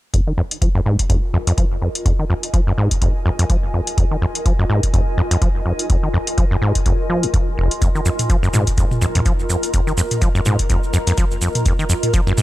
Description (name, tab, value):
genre	acid house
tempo	125 BPM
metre	4/4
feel	swing 56% on 16ths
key	F minor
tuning	A4 = 442 Hz
part	acid bass, saw	riff	0.1-12.4 s	F1 to F3	-19 LUFS	equal	tube saturation, sidechain pumping, analog delay
part	booming analog drum machine	drums	0.1-12.4 s	cabasa, hi-hat, toms	-23 LUFS	equal	none
part	electronic kick drum	drums	0.1-12.2 s	none	-18 LUFS	equal	none
part	granular cloud pad	texture	1.2-12.4 s	F4 to Bb5	-26 LUFS	equal	built-in reverb, sidechain pumping
room	little or no reverb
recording	dry, gritty hardware recording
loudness	-15 LUFS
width	side -16 dB against mid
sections	0.1-12.4 A section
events	filter sweep on acid bass 0.1-12.4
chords	0.1 Fm